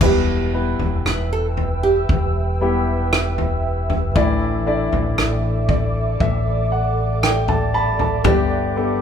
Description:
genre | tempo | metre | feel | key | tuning
pop ballad | 58 BPM | 4/4 | straight | unclear | A4 = 440 Hz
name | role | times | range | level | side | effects
nylon-string guitar | melody | 0.0-9.0 s | G4 to B4 | -23 LUFS | right 4 dB | none
warm grand piano | accompaniment | 0.0-9.0 s | G2 to B5 | -23 LUFS | left 2 dB | none
ethereal airy pad | sustained chords | 0.8-9.0 s | A4 to E6 | -26 LUFS | right 3 dB | ensemble chorus, built-in reverb
mellow fretless electric bass | bass | 0.0-9.0 s | E1 to A1 | -22 LUFS | equal | none
natural country drum kit | drums | 0.0-8.5 s | crash cymbal, kick drum, rim click, toms | -21 LUFS | left 2 dB | none
room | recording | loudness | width
light reverb | band playing live in one room | -17 LUFS | side -8 dB against mid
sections
0.0-9.0 A section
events
grand piano fill 5.2-8.2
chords
0.0 Em; 4.2 Asus4; 8.2 G

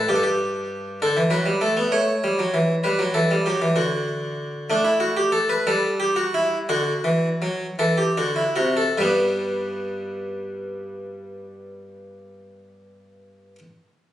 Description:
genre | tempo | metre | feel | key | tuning
classical, baroque-style two-part invention for harpsichord | 48-65 BPM (dotted quarters) | 6/8 | straight | G major | A4 = 440 Hz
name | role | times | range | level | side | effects
harpsichord | solo | 0.0-13.6 s | G2 to C#5 | -20 LUFS | equal | none
room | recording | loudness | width
wet recital hall reverb, RT60 1.5 s | recorded on a phone in the room, club reverb | -20 LUFS | side -12 dB against mid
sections
0.0-9.0 A section; 9.0-13.9 B section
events
slowing down 3.8-9.0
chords
0.1 N.C.; 1.0 D; 1.9 A; 2.9 A5; 3.8 D; 4.7 D/A; 5.7 Emadd11/G; 6.7 D; 9.0 G

